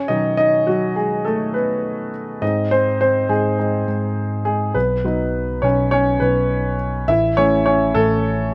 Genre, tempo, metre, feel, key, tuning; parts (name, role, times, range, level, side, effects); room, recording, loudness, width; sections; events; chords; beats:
piano-driven pop; 103 BPM; 4/4; straight; A4 = 441 Hz
warm concert grand piano; accompaniment; 0.0-8.5 s; B2 to E5; -20 LUFS; equal
bell-like tine electric piano; bass; 2.4-8.5 s; A1 to G#2; -24 LUFS; equal
little or no reverb; recorded outdoors, with no room sound; -19 LUFS; mono
0.0-2.4 A section; 2.4-8.5 B section
grand piano solo 0.0-2.4, 2.4-8.5
0.0 B; 2.4 G#; 4.8 B; 7.1 A
| 0.09 0.67 1.25 1.84 | 2.42 3.00 3.59 4.17 | 4.75 5.33 5.92 6.50 | 7.08 7.67 8.25